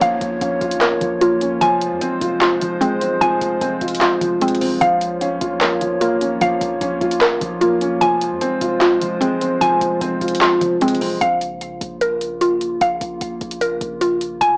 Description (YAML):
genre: hip hop, trap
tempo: 150 BPM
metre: 4/4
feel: half-time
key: Bb minor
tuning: A4 = 442 Hz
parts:
  - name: dark baby grand piano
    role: accompaniment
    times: 0.0-11.2 s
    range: F3 to F4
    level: -21 LUFS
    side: equal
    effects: none
  - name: warbly tape-like pad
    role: sustained chords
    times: 0.0-14.6 s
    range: C3 to Db5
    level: -25 LUFS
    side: equal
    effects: chorus, built-in reverb
  - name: mallet-like synth pluck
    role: arpeggios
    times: 0.0-14.6 s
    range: C4 to Ab5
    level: -18 LUFS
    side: equal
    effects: chorus, phaser, tape echo
  - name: hard-hitting 808-style bass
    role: bass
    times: 0.0-14.6 s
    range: F1 to F2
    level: -33 LUFS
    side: equal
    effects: none
  - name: trap drum kit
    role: drums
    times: 0.0-14.5 s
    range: handclaps, hi-hat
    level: -23 LUFS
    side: equal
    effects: none
  - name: downlifter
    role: sound effects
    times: 0.0-1.6 s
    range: none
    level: -44 LUFS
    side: equal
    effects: none
room: light reverb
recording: dry, gritty hardware recording, cassette tape, small speaker sound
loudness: -15 LUFS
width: side -36 dB against mid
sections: 0.0-11.2 A section; 11.2-14.6 B section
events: none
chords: 0.0 Bbm; 1.6 Fm; 4.8 Bbm; 8.0 Fm; 11.2 Bbm